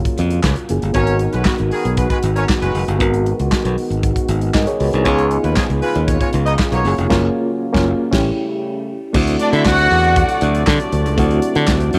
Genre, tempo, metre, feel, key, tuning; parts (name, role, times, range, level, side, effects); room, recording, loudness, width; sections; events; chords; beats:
disco; 117 BPM; 4/4; straight; G# dorian; A4 = 440 Hz
reed electric piano; accompaniment; 0.0-12.0 s; A3 to D#5; -24 LUFS; equal; fast tremolo
dark French horn section; sustained chords; 0.0-12.0 s; C3 to F#4; -27 LUFS; equal
modern studio drum kit; drums; 0.1-12.0 s; crash cymbal, handclaps, hi-hat, kick drum, snare drum; -22 LUFS; equal
modern bright fingered electric bass; bass; 0.2-12.0 s; E#1 to D3; -20 LUFS; equal
clear horn section; stabs; 0.9-12.0 s; D#3 to D#5; -26 LUFS; equal; tape echo
clear studio string section; second line; 9.4-10.4 s; D4 to F#5; -18 LUFS; equal
light reverb, small room ambience; -17 LUFS; mono
0.0-9.1 A section; 9.1-12.0 B section
band accent 7.1-9.1
0.0 F#maj7; 0.9 G#m7; 5.1 C#7; 6.8 F#maj7; 8.1 A7; 9.1 D7
0.43 | 0.94 1.46 1.97 2.49 | 3.00 3.51 4.03 4.54 | 5.05 5.57 6.08 6.59 | 7.10 7.61 8.12 8.63 | 9.14 9.65 10.16 10.67 | 11.18 11.68